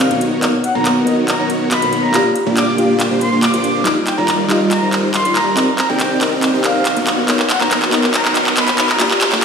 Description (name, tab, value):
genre	future bass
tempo	140 BPM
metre	4/4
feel	half-time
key	unclear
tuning	A4 = 441 Hz
part	breathy flute-like synth lead	melody	0.0-9.4 s	F5 to D6	-20 LUFS	equal	wide subtle chorus, cassette tape, tape echo
part	soft round pluck	accompaniment	0.0-9.4 s	G3 to F5	-21 LUFS	left 2 dB	lush chorus
part	dense compressed supersaw	riff	0.0-9.4 s	G3 to F5	-17 LUFS	equal	low-pass filter
part	trap drum kit	drums	0.0-9.4 s	handclaps, hi-hat	-18 LUFS	equal	studio reverb
part	riser	sound effects	5.7-9.4 s	none	-25 LUFS	equal	none
room	wet lush hall reverb, RT60 2.1 s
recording	played on a big sound system in a bare room, stone room reverb, high-pass filter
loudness	-13 LUFS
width	side -6 dB against mid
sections	0.0-9.4 A section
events	build-up 0.0-9.4; drum fill 0.0-9.4; filter sweep 0.0-9.4; riser 5.7-9.4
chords	0.2 Bmaj9; 2.1 Gm7; 3.9 Ebmaj9; 5.6 Cm9; 7.1 Bmaj9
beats	0.00 | 0.43 0.86 1.28 1.71 | 2.14 2.57 3.00 3.43 | 3.86 4.29 4.71 5.14 | 5.57 6.00 6.43 6.86 | 7.29 7.71 8.14 8.57 | 9.00 9.43